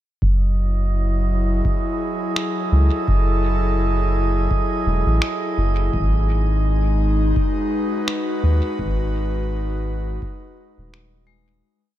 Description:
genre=ambient dub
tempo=84 BPM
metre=4/4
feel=swing 56% on 16ths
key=F# dorian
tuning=A4 = 440 Hz
part: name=airy breathy pad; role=sustained chords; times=0.4-11.7 s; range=F#3 to B4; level=-24 LUFS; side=left 1 dB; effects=chorus
part: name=soft dub sub bass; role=bass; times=0.2-11.6 s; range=D#1 to D#2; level=-19 LUFS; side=equal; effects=none
part: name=electronic kick drum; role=drums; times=0.2-10.4 s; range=none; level=-23 LUFS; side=equal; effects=none
part: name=drifting glass-harmonics texture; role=texture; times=0.5-11.7 s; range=D#5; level=-29 LUFS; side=right 5 dB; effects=chorus, built-in reverb
part: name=electronic finger snaps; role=drums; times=2.4-11.1 s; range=none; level=-27 LUFS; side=equal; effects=dub echo
part: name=vibraphone with hard mallets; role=arpeggios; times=11.3-12.0 s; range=G#3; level=-66 LUFS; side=left 11 dB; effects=none
room=digital ambience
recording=none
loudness=-18 LUFS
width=side -13 dB against mid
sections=0.2-11.7 groove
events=fade-out 7.8-11.7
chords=0.2 F#m9; 5.9 G#m7

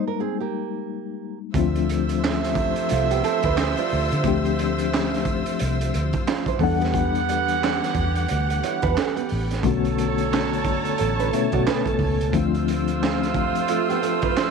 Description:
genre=R&B, neo-soul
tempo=89 BPM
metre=4/4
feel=swing 59% on 16ths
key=unclear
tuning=A4 = 440 Hz
part: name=nylon-string guitar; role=second line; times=0.0-14.5 s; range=A3 to D5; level=-27 LUFS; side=right 17 dB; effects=none
part: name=mellow reed electric piano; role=accompaniment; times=0.0-14.5 s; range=B2 to F#5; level=-26 LUFS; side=left 13 dB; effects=fast tremolo
part: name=clear studio string section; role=sustained chords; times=1.5-14.5 s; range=F4 to E6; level=-31 LUFS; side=left 2 dB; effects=none
part: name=warm horn section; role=stabs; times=1.5-14.5 s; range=C3 to F#5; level=-27 LUFS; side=right 13 dB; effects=none
part: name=crunchy breakbeat drum kit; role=drums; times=1.5-14.5 s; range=handclaps, hi-hat, kick drum, snare drum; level=-27 LUFS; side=right 4 dB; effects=none
part: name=vintage muted fingered electric bass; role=bass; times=1.6-13.5 s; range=A1 to D3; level=-26 LUFS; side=equal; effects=none
room=light reverb, studio ambience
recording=1960s-style stereo with parts hard left and right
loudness=-20 LUFS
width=side -5 dB against mid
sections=0.0-1.5 A section; 1.5-14.5 B section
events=break 0.0-1.5; reed electric piano solo 0.0-1.5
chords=0.0 G#maj7sus2/G; 1.5 Dm9; 6.6 Em9; 9.6 Bm9; 12.3 Dm9

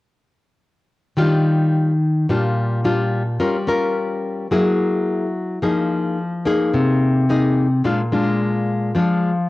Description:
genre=bossa nova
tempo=108 BPM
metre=4/4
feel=straight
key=Eb major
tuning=A4 = 440 Hz
part: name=nylon-string guitar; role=solo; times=1.2-9.5 s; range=Bb2 to Bb4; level=-17 LUFS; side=left 1 dB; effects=none
room=light reverb, small room ambience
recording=home recording on cassette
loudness=-17 LUFS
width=side -18 dB against mid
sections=1.2-9.5 A section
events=none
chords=1.2 Ebmaj9; 3.4 Gm7b5; 4.5 Gb9; 5.6 Fm7; 7.8 Bb7

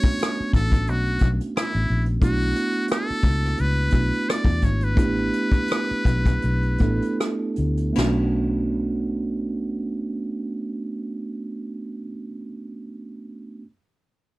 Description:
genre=R&B, neo-soul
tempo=76-89 BPM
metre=4/4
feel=swing 56% on 16ths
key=B minor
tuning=A4 = 440 Hz
part: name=trumpet with metal mute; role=melody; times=0.0-7.2 s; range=E4 to D5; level=-28 LUFS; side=left 1 dB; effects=none
part: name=mellow tine electric piano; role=accompaniment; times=0.0-13.6 s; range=A3 to A4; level=-26 LUFS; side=right 2 dB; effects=none
part: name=vintage brush drum kit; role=drums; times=0.0-8.2 s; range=china cymbal, hi-hat, kick drum, rim click, snare drum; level=-22 LUFS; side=left 1 dB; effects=none
part: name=vintage muted fingered electric bass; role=bass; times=0.4-12.1 s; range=G#1 to E2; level=-24 LUFS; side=left 1 dB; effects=tube saturation
room=little or no reverb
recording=none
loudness=-20 LUFS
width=side -19 dB against mid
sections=0.0-8.0 A section; 8.0-11.1 B section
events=slowing down 2.2-8.0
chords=0.0 Bm9; 2.2 E9sus4/B; 5.0 A9sus4; 8.0 Bm9

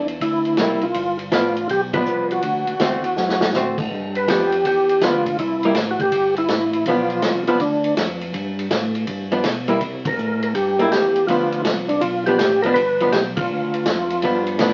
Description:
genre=soul jazz organ trio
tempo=163 BPM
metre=4/4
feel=swing 66% on 8ths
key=G mixolydian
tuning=A4 = 440 Hz
part: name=percussive tonewheel organ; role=melody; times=0.0-14.4 s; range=D4 to B4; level=-22 LUFS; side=equal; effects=slow rotary speaker, overdrive, chorus vibrato
part: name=tonewheel organ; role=bass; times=0.0-14.7 s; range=G1 to C3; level=-31 LUFS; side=equal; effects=overdrive, chorus vibrato, slow rotary speaker
part: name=vintage drum kit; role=drums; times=0.1-14.7 s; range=crash cymbal, hi-hat, kick drum, ride cymbal, snare drum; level=-27 LUFS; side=equal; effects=none
part: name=archtop guitar, miked and amplified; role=accompaniment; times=0.6-14.7 s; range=D3 to F#4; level=-23 LUFS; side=equal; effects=none
room=wet studio reverb, RT60 0.8 s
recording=very old 78 rpm record, vinyl crackle, nothing above 7.5 kHz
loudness=-20 LUFS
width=mono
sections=0.0-3.9 A section; 3.9-14.7 A section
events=band accent 1.9, 10.0, 13.3; drum fill 3.2-3.5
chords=0.0 C7; 1.0 G7; 2.4 D7; 3.9 G7; 5.4 C; 6.9 G7; 9.8 C7; 11.3 G7

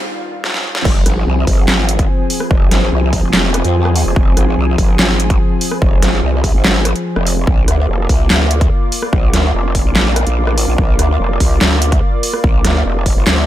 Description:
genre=heavy wobble dubstep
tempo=145 BPM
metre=4/4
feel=half-time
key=F dorian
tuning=A4 = 440 Hz
part: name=lush unison pad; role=sustained chords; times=0.0-13.5 s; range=G2 to D5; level=-20 LUFS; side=equal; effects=chorus, sidechain pumping
part: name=dubstep drum kit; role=drums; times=0.4-13.3 s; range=crash cymbal, handclaps, hi-hat, rim click, snare drum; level=-17 LUFS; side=equal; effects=overdrive
part: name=growl bass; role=bass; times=0.9-13.5 s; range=F1 to F2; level=-15 LUFS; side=equal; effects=chorus, overdrive
part: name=electronic kick drum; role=drums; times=0.9-13.1 s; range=none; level=-14 LUFS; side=equal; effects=overdrive
room=little or no reverb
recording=high-pass filter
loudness=-11 LUFS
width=side -13 dB against mid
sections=0.9-13.5 A section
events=break 0.0-0.9; drum fill 0.4-0.9; drop 0.9-13.5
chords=0.0 Ebadd9/G; 0.9 Fm; 7.5 Bb

